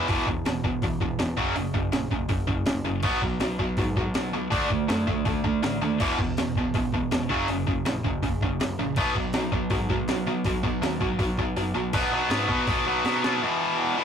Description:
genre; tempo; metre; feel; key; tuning
punk rock; 162 BPM; 4/4; straight; unclear; A4 = 440 Hz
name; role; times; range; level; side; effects
tight distorted guitar; riff; 0.0-14.0 s; E2 to D4; -25 LUFS; equal; distortion
growling picked electric bass; bass; 0.0-13.4 s; E1 to B2; -34 LUFS; equal; overdrive
breakbeat sampler-style drum kit; drums; 0.1-13.3 s; crash cymbal, hi-hat, kick drum, snare drum; -29 LUFS; equal; none
room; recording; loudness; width
moderate booth ambience, RT60 0.2 s; rough rehearsal-room recording, tube saturation; -23 LUFS; side -8 dB against mid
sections
0.1-11.9 A section; 11.9-13.4 B section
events
kick and snare drop out 11.6-11.9; drum fill 13.1-13.4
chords
0.1 E5; 1.4 F#5; 3.0 B5; 4.5 D5; 6.0 E5; 7.3 F#; 9.0 B5; 13.4 E5

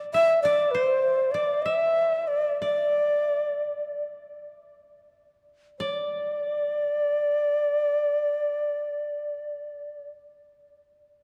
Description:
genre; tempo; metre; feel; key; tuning
japanese traditional, Japanese chamber music; 33-53 BPM; 2/4; rubato; unclear; A4 = 440 Hz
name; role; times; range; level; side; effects
koto; second line; 0.0-10.4 s; C5 to E5; -37 LUFS; equal; none
reedy long shakuhachi; melody; 0.1-10.1 s; C5 to E5; -26 LUFS; equal; none
room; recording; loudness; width
moderate cathedral reverb, RT60 4.5 s; dark, warm production; -25 LUFS; mono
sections
0.0-5.8 A section; 5.8-9.3 B section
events
slowing down 0.1-5.8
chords
none

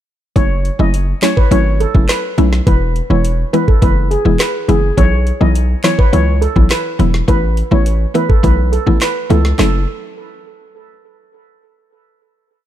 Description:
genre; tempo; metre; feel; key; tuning
dancehall; 104 BPM; 4/4; straight; F# minor; A4 = 440 Hz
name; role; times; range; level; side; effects
steel pan; melody; 0.4-9.9 s; G#4 to D#5; -19 LUFS; right 2 dB; tape echo
mallet-like synth pluck; accompaniment; 0.4-9.8 s; E3 to E4; -18 LUFS; left 1 dB; chorus
hard-hitting 808-style bass; bass; 0.4-9.9 s; E1 to C#2; -14 LUFS; equal; none
island pop drum kit; drums; 0.4-9.7 s; handclaps, hi-hat, kick drum, rim click, snare drum; -14 LUFS; equal; none
room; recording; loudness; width
little or no reverb; dark, warm production; -11 LUFS; side -12 dB against mid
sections
0.4-9.6 verse; 9.6-11.9 final chord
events
none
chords
0.4 F#m7; 2.7 E; 5.0 Bsus4; 7.3 Asus2; 9.6 F#m7

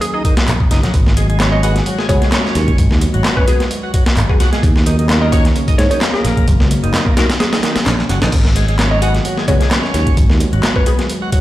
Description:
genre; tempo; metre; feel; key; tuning
breakbeat, breaks; 130 BPM; 4/4; swing 54% on 16ths; G# minor; A4 = 440 Hz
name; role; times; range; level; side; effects
hollow square pluck; melody; 0.0-11.1 s; G#4 to D#5; -23 LUFS; equal; chorus, small speaker sound, ping-pong delay
warbly tape-like pad; sustained chords; 0.0-11.4 s; D#3 to F#4; -24 LUFS; left 1 dB; chorus, built-in reverb, sidechain pumping
breakbeat sampler-style drum kit; drums; 0.0-11.4 s; crash cymbal, hi-hat, kick drum, snare drum; -15 LUFS; equal; studio reverb
garage drum kit; drums; 0.0-11.4 s; handclaps, hi-hat; -24 LUFS; equal; studio reverb
bright tonewheel organ; riff; 0.1-11.4 s; C#3 to G#4; -23 LUFS; right 1 dB; overdrive, slow rotary speaker, tube saturation, ping-pong delay
picked electric bass; bass; 0.4-10.6 s; F#1 to G#2; -15 LUFS; equal; none
filtered dub chord stab; stabs; 1.6-11.0 s; B3 to C#5; -25 LUFS; left 3 dB; phaser, ensemble chorus, ping-pong delay
room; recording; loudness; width
light reverb; played on a big sound system in a bare room, stone room reverb; -12 LUFS; side -15 dB against mid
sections
0.0-8.3 A section; 8.3-11.4 A section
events
drop 0.0-8.3, 8.3-11.4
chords
0.0 F#6; 0.9 G#m7; 4.6 D#m7; 6.5 F#6; 8.3 G#m7

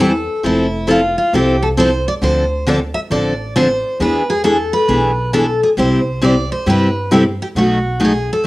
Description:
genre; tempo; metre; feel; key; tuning
acoustic string swing (jazz manouche); 135 BPM; 4/4; swing 63% on 8ths; unclear; A4 = 436 Hz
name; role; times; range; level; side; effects
picked steel-string acoustic guitar; melody; 0.0-8.5 s; E4 to E5; -18 LUFS; equal; cassette tape
picked steel-string acoustic guitar; accompaniment; 0.0-8.5 s; B2 to A4; -15 LUFS; left 1 dB; cassette tape
upright bass; bass; 0.0-8.5 s; F1 to G2; -22 LUFS; equal; none
room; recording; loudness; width
moderate studio reverb, RT60 0.6 s; home recording on cassette; -13 LUFS; side -19 dB against mid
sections
0.0-8.5 A section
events
none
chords
0.4 Fmaj7; 2.2 Dm7; 4.0 E7; 5.8 C; 7.6 B7

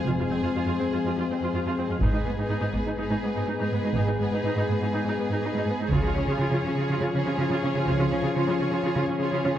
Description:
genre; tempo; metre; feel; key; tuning
cinematic, epic orchestral film score; 123 BPM; 4/4; straight; unclear; A4 = 440 Hz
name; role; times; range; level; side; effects
warm symphonic violin section; melody; 0.0-9.6 s; Cb5 to Db5; -36 LUFS; left 4 dB; none
clear studio violin section; second line; 0.0-9.6 s; Ab4; -34 LUFS; equal; none
dark French horn section; sustained chords; 0.0-9.6 s; F3 to Db4; -29 LUFS; left 4 dB; none
clear symphonic viola section; accompaniment; 0.1-9.5 s; Cb4 to F4; -32 LUFS; right 2 dB; none
clear symphonic cello section; bass; 0.1-9.6 s; F2 to Db3; -28 LUFS; right 2 dB; none
warm studio double bass section; bass; 0.1-8.0 s; F1 to Db2; -31 LUFS; right 3 dB; none
taiko ensemble; drums; 2.0-3.0, 5.9-6.8 s; none; -30 LUFS; equal; none
room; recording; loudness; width
moderate concert hall reverb, RT60 2.4 s; worn, warbling old tape, cassette tape, warbly pitch drift; -23 LUFS; side -11 dB against mid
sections
0.0-9.6 A section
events
build-up 0.0-9.6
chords
0.0 Fm; 2.0 Abm; 5.9 Db

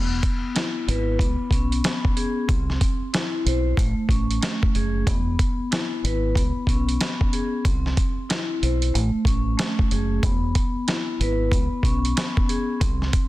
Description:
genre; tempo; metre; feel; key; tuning
hip hop, boom-bap hip-hop; 93 BPM; 4/4; swing 62% on 16ths; unclear; A4 = 440 Hz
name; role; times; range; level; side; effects
vibraphone with medium hard mallets; accompaniment; 0.0-13.3 s; A3 to C5; -26 LUFS; left 1 dB; cassette tape, high-pass filter, low-pass filter
deep dub fingered electric bass; bass; 0.0-13.1 s; E1 to C#2; -24 LUFS; equal; none
dusty soul sampler-style drum kit; drums; 0.2-13.3 s; hi-hat, kick drum, snare drum; -23 LUFS; equal; none
room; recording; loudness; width
little or no reverb; dense, heavily limited modern master; -20 LUFS; side -17 dB against mid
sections
0.0-13.3 A section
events
none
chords
0.0 E; 1.2 C#5; 2.5 C; 3.8 Amaj7; 5.1 E; 6.4 C#5; 7.6 C; 8.9 Amaj7; 10.2 E; 11.5 C#5

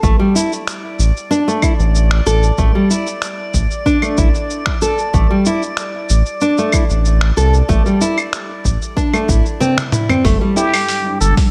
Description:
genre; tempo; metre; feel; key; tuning
organic downtempo; 94 BPM; 4/4; straight; unclear; A4 = 439 Hz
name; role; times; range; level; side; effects
nylon-string guitar; arpeggios; 0.0-10.7 s; G3 to A4; -20 LUFS; equal; tape echo
round analog bass; bass; 0.0-11.3 s; G1 to C2; -16 LUFS; equal; sidechain pumping
dusty soul sampler-style drum kit; drums; 0.0-11.5 s; claves, finger snaps, hi-hat, shaker, toms; -24 LUFS; equal; none
electronic kick drum; drums; 0.0-11.5 s; none; -19 LUFS; equal; overdrive
drifting glass-harmonics texture; texture; 0.5-10.3 s; D5; -30 LUFS; equal; chorus, built-in reverb
granular cloud pad; sustained chords; 10.7-11.5 s; G3 to F#5; -26 LUFS; equal; built-in reverb, sidechain pumping
trumpet with plunger mute; melody; 10.6-11.4 s; G4 to A4; -20 LUFS; equal; none
room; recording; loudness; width
light reverb; none; -15 LUFS; mono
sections
0.0-10.2 A section; 10.2-11.5 B section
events
kick drops out 9.6-10.2; drum fill 9.6-10.2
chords
0.0 N.C.; 5.1 Gsus2/A (rootless); 10.2 Gmaj7(no3)

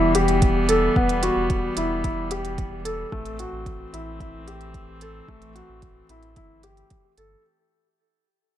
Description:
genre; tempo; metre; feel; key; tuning
piano and strings electronica; 111 BPM; 4/4; straight; unclear; A4 = 438 Hz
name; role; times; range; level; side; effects
rich string quartet; sustained chords; 0.0-7.4 s; E3 to C4; -28 LUFS; equal; none
felt-muted upright piano; riff; 0.0-7.4 s; A3 to A4; -24 LUFS; left 1 dB; ping-pong delay
warm sub bass; bass; 0.0-7.4 s; E1 to A1; -30 LUFS; equal; sidechain pumping
electronic hi-hat; drums; 0.1-7.3 s; none; -31 LUFS; right 8 dB; studio reverb
electronic kick drum; drums; 0.4-7.0 s; none; -25 LUFS; equal; studio reverb
room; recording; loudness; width
light reverb, small room ambience; none; -20 LUFS; side -11 dB against mid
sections
0.0-7.4 A section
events
fade-out 0.0-7.4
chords
0.0 Em; 3.1 Am

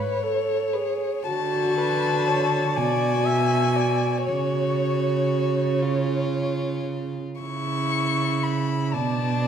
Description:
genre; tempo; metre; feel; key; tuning
classical, slow romantic movement for string quartet; 37-41 BPM (dotted quarters); 6/8; rubato; unclear; A4 = 439 Hz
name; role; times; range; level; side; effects
dark violin; melody; 0.0-9.5 s; C#5 to C#6; -27 LUFS; left 6 dB; none
dark viola; accompaniment; 0.0-9.5 s; F#4 to E5; -28 LUFS; right 3 dB; none
warm cello; bass; 0.0-9.5 s; G#2 to D3; -26 LUFS; right 4 dB; none
rich violin; second line; 0.7-9.5 s; D4 to B4; -28 LUFS; left 2 dB; none
room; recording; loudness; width
wet concert hall reverb, RT60 1.8 s; none; -21 LUFS; side -8 dB against mid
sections
0.0-9.5 A section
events
none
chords
0.0 C#7(no3); 1.3 D; 2.8 Bm6; 4.3 F#5/C#; 8.9 Bm7

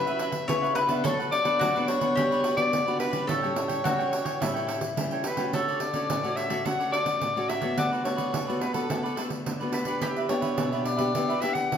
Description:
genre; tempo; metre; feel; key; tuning
samba and choro; 107 BPM; 4/4; straight; D major; A4 = 440 Hz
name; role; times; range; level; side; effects
warm soprano saxophone; melody; 0.0-11.8 s; A4 to F#5; -28 LUFS; left 2 dB; none
mandolin; second line; 0.0-11.8 s; E4 to C#5; -32 LUFS; left 2 dB; none
cavaquinho; accompaniment; 0.0-11.6 s; D4 to G5; -34 LUFS; right 3 dB; none
nylon-string guitar; accompaniment; 0.0-11.8 s; A2 to B4; -31 LUFS; left 2 dB; none
pandeiro; percussion; 0.1-11.8 s; none; -32 LUFS; right 3 dB; none
room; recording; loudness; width
wet stone room reverb, RT60 1.3 s; band playing live in one room; -24 LUFS; side -8 dB against mid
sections
0.0-5.5 A section; 5.5-11.8 B section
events
none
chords
0.0 F#7sus4; 1.0 D6/F#; 2.2 Gmaj7; 3.3 A7; 5.5 Dmaj7; 7.8 Bm7/D; 10.0 Em7

